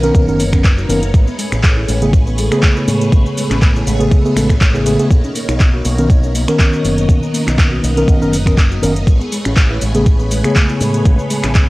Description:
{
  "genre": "nu-disco, nu disco",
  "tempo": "121 BPM",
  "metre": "4/4",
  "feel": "swing 54% on 16ths",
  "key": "unclear",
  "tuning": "A4 = 440 Hz",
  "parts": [
    { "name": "mellow tine electric piano", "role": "accompaniment", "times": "0.0-11.7 s", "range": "C#3 to A#4", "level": "-17 LUFS", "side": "equal", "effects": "medium stereo tremolo, vintage 12-bit sampler grit, sidechain pumping" },
    { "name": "string machine, full ensemble", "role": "sustained chords", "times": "0.0-11.7 s", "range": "A3 to D#5", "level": "-24 LUFS", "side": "equal", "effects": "phaser, ensemble chorus, sidechain pumping" },
    { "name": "soft round pluck", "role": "arpeggios", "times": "0.0-11.6 s", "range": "G#3 to A#4", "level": "-26 LUFS", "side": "left 1 dB", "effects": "none" },
    { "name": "fingered electric bass with an envelope filter", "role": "bass", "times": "0.0-11.7 s", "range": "F#1 to A2", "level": "-18 LUFS", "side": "equal", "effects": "none" },
    { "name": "house drum kit", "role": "drums", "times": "0.0-11.7 s", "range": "finger snaps, handclaps, hi-hat, shaker", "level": "-21 LUFS", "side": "equal", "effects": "studio reverb" },
    { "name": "electronic kick drum", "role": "drums", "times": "0.1-11.7 s", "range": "none", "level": "-10 LUFS", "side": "equal", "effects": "overdrive, studio reverb" }
  ],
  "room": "digital ambience",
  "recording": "dry, gritty hardware recording, transformer saturation",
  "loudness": "-11 LUFS",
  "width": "side -20 dB against mid",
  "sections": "0.0-11.7 A section",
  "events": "none",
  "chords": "0.0 Bmaj9; 1.1 Amaj9; 5.1 Bmaj9; 9.1 Amaj9",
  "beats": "0.15 0.64 | 1.14 1.63 2.13 2.63 | 3.12 3.62 4.11 4.61 | 5.11 5.60 6.10 6.59 | 7.09 7.58 8.08 8.58 | 9.07 9.57 10.06 10.56 | 11.06 11.55"
}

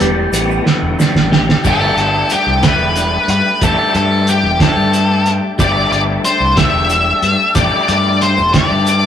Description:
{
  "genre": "psychedelic rock",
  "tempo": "61 BPM (dotted quarters)",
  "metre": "6/8",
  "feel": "straight",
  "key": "unclear",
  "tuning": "A4 = 440 Hz",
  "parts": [
    { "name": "tonewheel organ", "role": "sustained chords", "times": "0.0-9.1 s", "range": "D3 to D6", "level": "-26 LUFS", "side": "right 1 dB", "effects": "none" },
    { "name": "electric guitar through a small old amp", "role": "riff", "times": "0.0-9.1 s", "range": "A2 to G4", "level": "-19 LUFS", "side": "left 2 dB", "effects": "rotary speaker" },
    { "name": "fuzz fingered electric bass", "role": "bass", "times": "0.0-9.1 s", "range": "E1 to G2", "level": "-18 LUFS", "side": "left 1 dB", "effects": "overdrive" },
    { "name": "tanpura", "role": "drone", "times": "0.0-7.9 s", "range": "A2 to A3", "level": "-31 LUFS", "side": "right 1 dB", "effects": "none" },
    { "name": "cloth-damped thuddy drum kit", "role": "drums", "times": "0.0-9.0 s", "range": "crash cymbal, hi-hat, kick drum, snare drum", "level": "-16 LUFS", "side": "right 2 dB", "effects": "none" },
    { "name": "tube shaker", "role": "percussion", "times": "0.3-9.0 s", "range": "none", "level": "-32 LUFS", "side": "left 6 dB", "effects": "none" },
    { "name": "octave-fuzz lead guitar", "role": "melody", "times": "1.7-9.1 s", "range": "G4 to E5", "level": "-14 LUFS", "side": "left 2 dB", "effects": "distortion" }
  ],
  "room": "moderate stone room reverb, RT60 1.1 s",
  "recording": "rough rehearsal-room recording, warm saturation",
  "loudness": "-11 LUFS",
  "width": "side -9 dB against mid",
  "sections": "0.0-1.6 A section; 1.6-9.1 B section",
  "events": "tonewheel organ solo 0.0-1.6; drum fill 0.7-1.6",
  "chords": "0.0 G; 1.6 Gsus2",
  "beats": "0.66 | 1.64 2.63 | 3.61 4.60 | 5.58 6.57 | 7.55 8.54"
}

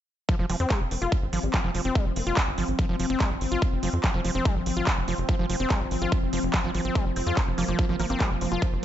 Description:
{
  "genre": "psychedelic trance",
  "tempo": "144 BPM",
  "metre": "4/4",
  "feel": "straight",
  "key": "F minor",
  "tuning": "A4 = 440 Hz",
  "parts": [
    { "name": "evolving wavetable pad", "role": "sustained chords", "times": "0.3-8.8 s", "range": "F3 to C4", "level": "-32 LUFS", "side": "equal", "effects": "ensemble chorus, built-in reverb, sidechain pumping" },
    { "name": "overdriven acid bass", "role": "riff", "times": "0.3-8.6 s", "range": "F3 to F4", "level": "-30 LUFS", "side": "moving between left 5 dB and right 2 dB", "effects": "distortion, auto-pan, sidechain pumping, ping-pong delay" },
    { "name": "big-room dance drum kit", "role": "drums", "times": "0.3-8.7 s", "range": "handclaps, hi-hat", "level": "-32 LUFS", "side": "right 1 dB", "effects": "studio reverb" },
    { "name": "electronic kick drum", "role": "drums", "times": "0.3-8.7 s", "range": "none", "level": "-26 LUFS", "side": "equal", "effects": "studio reverb" },
    { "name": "tight sequencer bass", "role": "bass", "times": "0.4-8.8 s", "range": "F1 to F2", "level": "-29 LUFS", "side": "equal", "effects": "tube saturation" },
    { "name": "resonant blip pluck", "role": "second line", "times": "0.5-2.6, 7.2-8.7 s", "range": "F3 to C4", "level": "-39 LUFS", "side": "left 3 dB", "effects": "phaser, sidechain pumping, high-pass filter, ping-pong delay" }
  ],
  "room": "light reverb",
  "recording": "nothing above 7.8 kHz",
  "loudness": "-23 LUFS",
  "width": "side -11 dB against mid",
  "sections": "0.3-8.8 A section",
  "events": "none",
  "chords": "0.3 F5",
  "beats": "| 0.29 0.70 1.12 1.54 | 1.95 2.37 2.79 3.20 | 3.62 4.04 4.45 4.87 | 5.29 5.70 6.12 6.54 | 6.95 7.37 7.79 8.20 | 8.62"
}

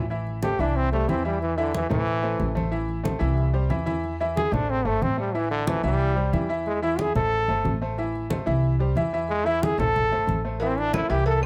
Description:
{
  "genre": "latin, salsa",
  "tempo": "183 BPM",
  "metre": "4/4",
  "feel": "straight",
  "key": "A minor",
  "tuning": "A4 = 441 Hz",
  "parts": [
    { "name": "bright concert grand piano", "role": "accompaniment", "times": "0.0-11.5 s", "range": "E3 to E5", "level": "-31 LUFS", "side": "equal", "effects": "none" },
    { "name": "upright bass", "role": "bass", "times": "0.0-11.5 s", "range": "G1 to E2", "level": "-29 LUFS", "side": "equal", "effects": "none" },
    { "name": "congas", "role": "percussion", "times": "0.1-11.5 s", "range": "none", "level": "-32 LUFS", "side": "equal", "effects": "none" },
    { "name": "brilliant trombone", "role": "melody", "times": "0.4-11.5 s", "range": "D3 to A4", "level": "-28 LUFS", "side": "equal", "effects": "plate reverb" },
    { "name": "cowbell", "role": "percussion", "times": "10.6-11.4 s", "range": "none", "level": "-34 LUFS", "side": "equal", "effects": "none" },
    { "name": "claves", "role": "percussion", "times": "10.9-11.5 s", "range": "none", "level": "-42 LUFS", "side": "equal", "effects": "none" }
  ],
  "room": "moderate studio ambience, RT60 0.5 s",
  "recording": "none",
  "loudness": "-24 LUFS",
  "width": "mono",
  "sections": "0.1-11.5 A section",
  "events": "trombone solo 0.1-11.5",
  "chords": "0.1 Am; 0.8 C; 1.4 Am; 3.4 C; 4.0 Ammaj7; 4.7 Am; 6.0 C; 6.7 Ammaj7; 7.3 Am; 8.6 C; 9.3 Ammaj7; 9.9 Am",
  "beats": "| 0.10 0.42 0.75 1.08 | 1.41 1.74 2.06 2.39 | 2.72 3.05 3.38 3.71 | 4.03 4.36 4.69 5.02 | 5.35 5.68 6.00 6.33 | 6.66 6.99 7.32 7.65 | 7.98 8.30 8.63 8.96 | 9.29 9.62 9.95 10.28 | 10.61 10.94 11.26"
}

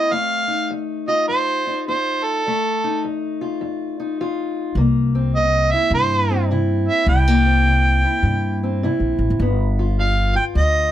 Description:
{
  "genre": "acoustic country blues, solo or duo",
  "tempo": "104 BPM",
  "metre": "4/4",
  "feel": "swing 64% on 8ths",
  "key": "unclear",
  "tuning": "A4 = 441 Hz",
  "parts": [
    { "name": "mellow harmonica", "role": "melody", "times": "0.0-10.9 s", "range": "A4 to G5", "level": "-19 LUFS", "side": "right 2 dB", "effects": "none" },
    { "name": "fingerpicked steel-string acoustic guitar", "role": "accompaniment", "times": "0.0-10.9 s", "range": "F2 to F4", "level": "-23 LUFS", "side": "left 2 dB", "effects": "none" },
    { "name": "upright bass", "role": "bass", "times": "4.8-10.9 s", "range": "G1 to G2", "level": "-18 LUFS", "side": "equal", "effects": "none" }
  ],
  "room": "light reverb",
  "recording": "none",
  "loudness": "-17 LUFS",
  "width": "side -12 dB against mid",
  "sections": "0.0-10.9 A section",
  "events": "none",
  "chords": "0.1 F7; 4.8 C7; 9.4 G7",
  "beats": "| 0.12 0.70 1.28 1.86 | 2.44 3.02 3.60 4.18 | 4.76 5.34 5.92 6.50 | 7.08 7.66 8.24 8.82 | 9.39 9.97 10.55"
}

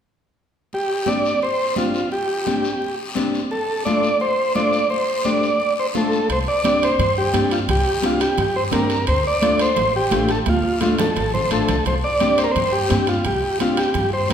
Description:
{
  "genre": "latin, cumbia",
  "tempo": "172 BPM",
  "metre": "4/4",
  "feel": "straight",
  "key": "unclear",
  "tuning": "A4 = 440 Hz",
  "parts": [
    { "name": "combo organ", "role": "melody", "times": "0.7-14.3 s", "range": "F4 to D5", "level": "-19 LUFS", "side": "right 1 dB", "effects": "none" },
    { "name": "congas", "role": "percussion", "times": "0.7-14.3 s", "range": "none", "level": "-27 LUFS", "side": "right 5 dB", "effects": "none" },
    { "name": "guiro", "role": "percussion", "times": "0.7-14.3 s", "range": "none", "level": "-32 LUFS", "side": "left 4 dB", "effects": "none" },
    { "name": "mellow electric guitar", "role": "accompaniment", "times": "1.1-14.3 s", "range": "A3 to G4", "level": "-24 LUFS", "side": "left 4 dB", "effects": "none" },
    { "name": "upright bass", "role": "bass", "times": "6.3-14.3 s", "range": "A1 to G2", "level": "-25 LUFS", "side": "equal", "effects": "none" },
    { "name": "timbales", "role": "percussion", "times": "6.3-14.3 s", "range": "none", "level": "-30 LUFS", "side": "right 4 dB", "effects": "none" }
  ],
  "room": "wet recital hall reverb, RT60 1.4 s",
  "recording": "recorded in a church or concert hall",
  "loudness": "-17 LUFS",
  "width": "side -8 dB against mid",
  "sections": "0.7-6.3 A section; 6.3-14.3 B section",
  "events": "drum fill 10.5-11.9",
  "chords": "0.7 Csus2; 3.5 Dm; 6.3 Csus2; 9.1 Dm; 11.9 Csus2",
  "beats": "| 0.72 1.07 1.42 1.77 | 2.12 2.46 2.81 3.16 | 3.51 3.85 4.20 4.55 | 4.90 5.25 5.59 5.94 | 6.29 6.64 6.99 7.33 | 7.68 8.03 8.38 8.73 | 9.07 9.42 9.77 10.12 | 10.47 10.82 11.16 11.51 | 11.86 12.21 12.56 12.91 | 13.26 13.61 13.95 14.30"
}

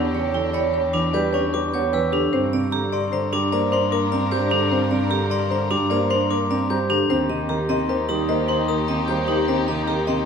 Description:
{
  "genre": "classical, minimalist pattern music",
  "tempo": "151 BPM",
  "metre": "6/4",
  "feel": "straight",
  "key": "unclear",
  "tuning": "A4 = 441 Hz",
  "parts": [
    { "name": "buzzing marimba with medium mallets", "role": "melody", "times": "0.0-10.3 s", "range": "G4 to Bb5", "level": "-27 LUFS", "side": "left 6 dB", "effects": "none" },
    { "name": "dark grand piano", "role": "accompaniment", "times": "0.0-10.3 s", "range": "C3 to Eb4", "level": "-26 LUFS", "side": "right 2 dB", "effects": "none" },
    { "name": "rich studio violin section", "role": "sustained chords", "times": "0.0-10.3 s", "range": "D4 to Bb4", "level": "-31 LUFS", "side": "left 4 dB", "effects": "none" },
    { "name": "clear cello", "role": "bass", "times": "0.0-10.3 s", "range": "Eb2 to G2", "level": "-27 LUFS", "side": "right 2 dB", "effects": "none" },
    { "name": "vibraphone with hard mallets", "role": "arpeggios", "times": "0.1-10.3 s", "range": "D4 to Eb5", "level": "-24 LUFS", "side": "right 4 dB", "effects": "none" },
    { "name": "glockenspiel with brass mallets", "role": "arpeggios", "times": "0.5-10.3 s", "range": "Bb5 to G6", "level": "-28 LUFS", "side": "left 7 dB", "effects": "none" }
  ],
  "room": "wet recital hall reverb, RT60 1.6 s",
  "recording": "none",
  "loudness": "-19 LUFS",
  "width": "side -6 dB against mid",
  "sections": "0.0-10.3 A section",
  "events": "none",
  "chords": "0.0 Em7; 2.3 Gm; 7.1 Eb",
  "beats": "0.35 0.74 1.14 1.54 1.94 | 2.33 2.73 3.13 3.52 3.92 4.32 | 4.72 5.11 5.51 5.91 6.31 6.70 | 7.10 7.50 7.89 8.29 8.69 9.09 | 9.48 9.88"
}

